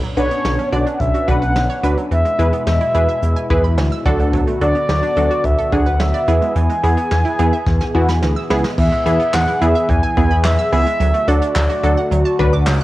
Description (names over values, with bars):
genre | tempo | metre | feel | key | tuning
synth-pop | 108 BPM | 4/4 | straight | unclear | A4 = 439 Hz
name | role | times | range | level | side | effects
chorused pulse-width pad | sustained chords | 0.0-12.8 s | B2 to G#4 | -25 LUFS | equal | phaser
analog pluck | arpeggios | 0.0-12.8 s | D3 to E6 | -27 LUFS | right 6 dB | chorus, tape echo
jazz brush drum kit | drums | 0.0-12.8 s | crash cymbal, handclaps, hi-hat, kick drum, snare drum | -22 LUFS | equal | cassette tape
mellow horn-like synth lead | melody | 0.2-12.4 s | C#5 to G#5 | -20 LUFS | equal | chorus, cassette tape
funky polysynth comp | accompaniment | 0.2-12.5 s | B3 to D5 | -21 LUFS | equal | chorus
smooth gliding synth bass | bass | 0.2-12.8 s | B1 to E2 | -18 LUFS | equal | none
room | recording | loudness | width
light reverb, small room reverb | home recording on cassette | -14 LUFS | side -16 dB against mid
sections
0.0-8.8 A section; 8.8-12.8 B section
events
drum fill 7.7-8.8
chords
0.0 Bmadd9; 2.1 E; 4.1 D6; 6.3 E; 11.0 D